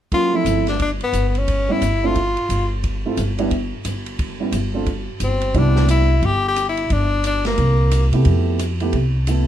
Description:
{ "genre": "jazz, small-group swing and bop", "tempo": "177 BPM", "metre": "4/4", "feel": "swing 62% on 8ths", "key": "C major", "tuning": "A4 = 440 Hz", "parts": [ { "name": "edgy tenor saxophone", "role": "melody", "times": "0.1-2.7, 5.2-8.1 s", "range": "Bb3 to G4", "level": "-20 LUFS", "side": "left 2 dB", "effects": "none" }, { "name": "warm concert grand piano", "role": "accompaniment", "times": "0.1-6.1, 8.1-9.5 s", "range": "F3 to A4", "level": "-22 LUFS", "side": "right 4 dB", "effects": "none" }, { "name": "open jazz drum kit", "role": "drums", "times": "0.1-9.4 s", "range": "hi-hat, kick drum, ride cymbal, snare drum", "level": "-27 LUFS", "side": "equal", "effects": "none" }, { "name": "upright bass", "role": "bass", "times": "0.4-9.5 s", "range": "G1 to C3", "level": "-19 LUFS", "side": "equal", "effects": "none" } ], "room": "light reverb", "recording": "dark, warm production, lossy compression artefacts", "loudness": "-17 LUFS", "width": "side -11 dB against mid", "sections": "0.1-5.5 A section; 5.5-9.5 B section", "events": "none", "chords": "0.1 Gm13; 0.8 G; 1.5 A9; 2.2 Fsus2/G; 2.8 Dm9; 3.5 N.C.; 4.2 A9; 4.9 Gsus4; 5.5 Cmaj9; 6.9 G5; 7.6 C7; 8.3 Fmaj9#11", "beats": "| 0.12 0.46 0.80 1.14 | 1.48 1.81 2.15 2.49 | 2.83 3.17 3.51 3.85 | 4.19 4.53 4.87 5.21 | 5.54 5.88 6.22 6.56 | 6.90 7.24 7.58 7.92 | 8.26 8.60 8.94 9.28" }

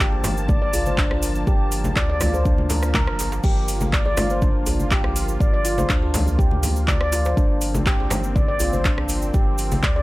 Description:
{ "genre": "afro house", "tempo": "122 BPM", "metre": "4/4", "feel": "straight", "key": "G minor", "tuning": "A4 = 440 Hz", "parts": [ { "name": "warm analog pad", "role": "sustained chords", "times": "0.0-10.0 s", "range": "F3 to A5", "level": "-31 LUFS", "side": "equal", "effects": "chorus, sidechain pumping" }, { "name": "handpan", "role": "arpeggios", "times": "0.0-10.0 s", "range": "D4 to D5", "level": "-25 LUFS", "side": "equal", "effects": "sidechain pumping, dub echo" }, { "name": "warm sub bass", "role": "bass", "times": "0.0-10.0 s", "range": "F1 to D2", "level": "-25 LUFS", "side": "equal", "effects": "sidechain pumping" }, { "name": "afro-pop drum kit", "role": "drums", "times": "0.0-9.9 s", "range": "crash cymbal, handclaps, hi-hat, rim click", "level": "-27 LUFS", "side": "equal", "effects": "small room ambience" }, { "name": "electronic kick drum", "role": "drums", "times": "0.0-9.9 s", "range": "none", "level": "-20 LUFS", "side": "equal", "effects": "small room ambience" }, { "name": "cabasa", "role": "percussion", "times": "0.0-9.9 s", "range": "none", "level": "-34 LUFS", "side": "right 4 dB", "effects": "none" }, { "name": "djembe", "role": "percussion", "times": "0.1-10.0 s", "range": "none", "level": "-30 LUFS", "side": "right 1 dB", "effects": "none" }, { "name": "congas", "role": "percussion", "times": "0.2-9.8 s", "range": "none", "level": "-28 LUFS", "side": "left 1 dB", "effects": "none" } ], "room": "small room reverb", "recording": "none", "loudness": "-18 LUFS", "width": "side -19 dB against mid", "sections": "0.0-10.0 A section", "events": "none", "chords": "0.0 Gm7", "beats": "0.49 0.98 | 1.47 1.96 2.45 2.94 | 3.44 3.93 4.42 4.91 | 5.40 5.90 6.39 6.88 | 7.37 7.86 8.36 8.85 | 9.34 9.83" }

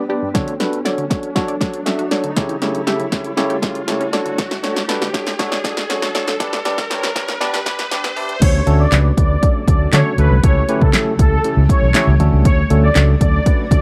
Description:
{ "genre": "dance-pop", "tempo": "119 BPM", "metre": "4/4", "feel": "straight", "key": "D major", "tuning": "A4 = 440 Hz", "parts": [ { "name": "tine electric piano", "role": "accompaniment", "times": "0.0-13.8 s", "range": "C#3 to B5", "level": "-24 LUFS", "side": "equal", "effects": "sidechain pumping" }, { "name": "granular cloud pad", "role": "sustained chords", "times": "0.0-13.8 s", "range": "C#3 to C#5", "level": "-31 LUFS", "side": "equal", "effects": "none" }, { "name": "unison pluck", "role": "arpeggios", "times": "0.0-8.4 s", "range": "G2 to D5", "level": "-31 LUFS", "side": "equal", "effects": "sidechain pumping, tape echo" }, { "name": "riser", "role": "sound effects", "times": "0.0-8.4 s", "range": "none", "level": "-30 LUFS", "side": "equal", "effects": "none" }, { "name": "punchy analog drum machine", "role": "drums", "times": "0.3-13.8 s", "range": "crash cymbal, handclaps, hi-hat, kick drum, snare drum", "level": "-20 LUFS", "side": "equal", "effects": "none" }, { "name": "filtered supersaw swell", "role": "melody", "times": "8.4-13.8 s", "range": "A4 to D5", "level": "-23 LUFS", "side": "equal", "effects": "sidechain pumping, tape echo" }, { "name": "vintage muted fingered electric bass", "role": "bass", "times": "8.4-13.8 s", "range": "B1 to D3", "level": "-16 LUFS", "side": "equal", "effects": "sidechain pumping" } ], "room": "little or no reverb", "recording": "dry, close 1970s-style studio recording, high-pass filter", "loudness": "-16 LUFS", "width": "mono", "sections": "0.0-8.4 A section; 8.4-13.8 B section", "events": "build-up 0.0-8.4; drum fill 0.0-8.4; riser 0.0-8.4; filter sweep 0.0-8.4; tine electric piano fill 7.4-8.4; drop 8.4-13.8", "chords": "0.4 Dmaj7; 2.4 A7/C#; 4.1 Dmaj7; 6.4 G; 8.4 Dmaj7; 10.4 A7/C#; 12.2 Dmaj7", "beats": "| 0.35 0.85 1.36 1.86 | 2.37 2.87 3.38 3.88 | 4.38 4.89 5.39 5.90 | 6.40 6.91 7.41 7.91 | 8.42 8.92 9.43 9.93 | 10.44 10.94 11.44 11.95 | 12.45 12.96 13.46" }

